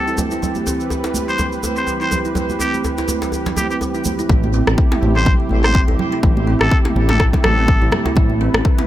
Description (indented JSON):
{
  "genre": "afro house",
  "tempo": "124 BPM",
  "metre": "4/4",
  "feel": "swing 56% on 16ths",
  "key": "A minor",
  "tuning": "A4 = 438 Hz",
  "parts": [
    { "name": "trumpet with straight mute", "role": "melody", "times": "0.0-7.9 s", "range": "G4 to C5", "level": "-23 LUFS", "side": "equal", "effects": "dub echo" },
    { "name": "warm analog pad", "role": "sustained chords", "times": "0.0-8.9 s", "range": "C3 to B4", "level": "-26 LUFS", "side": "right 2 dB", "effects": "chorus, sidechain pumping" },
    { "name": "kalimba", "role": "arpeggios", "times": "0.0-8.8 s", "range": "E3 to E4", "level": "-23 LUFS", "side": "right 2 dB", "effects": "sidechain pumping, dub echo" },
    { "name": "tube shaker", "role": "percussion", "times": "0.1-4.3 s", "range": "none", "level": "-30 LUFS", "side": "right 2 dB", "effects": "tape echo" },
    { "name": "congas", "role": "percussion", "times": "0.2-8.6 s", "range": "none", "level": "-26 LUFS", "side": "right 4 dB", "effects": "none" },
    { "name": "djembe", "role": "percussion", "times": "0.2-8.9 s", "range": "none", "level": "-27 LUFS", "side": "left 1 dB", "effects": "none" },
    { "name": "dark detuned saw bass", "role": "bass", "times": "4.3-8.6 s", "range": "A1", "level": "-18 LUFS", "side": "equal", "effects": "tube saturation, sidechain pumping" },
    { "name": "electronic kick drum", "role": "drums", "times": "4.3-8.8 s", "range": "none", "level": "-15 LUFS", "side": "equal", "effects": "overdrive" },
    { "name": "house drum kit", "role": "drums", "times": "4.7-8.9 s", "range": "rim click, toms", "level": "-21 LUFS", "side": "left 1 dB", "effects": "overdrive, low-pass filter on snare, low-pass filter on toms, tape echo" }
  ],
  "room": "light reverb, small room ambience",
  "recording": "echo-heavy mix",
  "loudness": "-14 LUFS",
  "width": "side -13 dB against mid",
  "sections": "0.0-4.3 A section; 4.3-8.9 B section",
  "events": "drop 4.3-8.9",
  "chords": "0.0 Am7",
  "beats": "| 0.42 0.91 1.39 1.88 | 2.36 2.84 3.33 3.81 | 4.29 4.78 5.26 5.75 | 6.23 6.71 7.20 7.68 | 8.17 8.65"
}